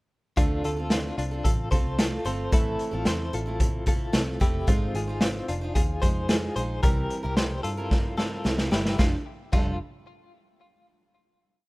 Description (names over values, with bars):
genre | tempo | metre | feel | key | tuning
jangly indie pop | 111 BPM | 4/4 | straight | F major | A4 = 440 Hz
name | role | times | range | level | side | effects
picked steel-string acoustic guitar | accompaniment | 0.4-9.8 s | A2 to C5 | -33 LUFS | right 2 dB | none
direct-recorded clean electric guitar | arpeggios | 0.4-9.8 s | C4 to C5 | -32 LUFS | left 3 dB | tremolo, digital delay
vintage muted picked electric bass | bass | 0.4-9.8 s | F1 to G2 | -31 LUFS | equal | none
raw garage drum kit | drums | 0.4-9.7 s | crash cymbal, hi-hat, kick drum, snare drum | -24 LUFS | equal | none
room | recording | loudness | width
studio ambience | rough home demo mix | -23 LUFS | side -22 dB against mid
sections
0.4-9.0 verse; 9.0-11.1 final chord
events
drum fill 7.9-9.0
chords
0.4 Dm7; 2.5 Am; 4.7 Ab6; 6.8 C7; 9.0 F69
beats
| 0.37 0.91 1.45 1.99 | 2.52 3.06 3.60 4.14 | 4.68 5.22 5.76 6.30 | 6.84 7.38 7.92 8.45 | 8.99 9.53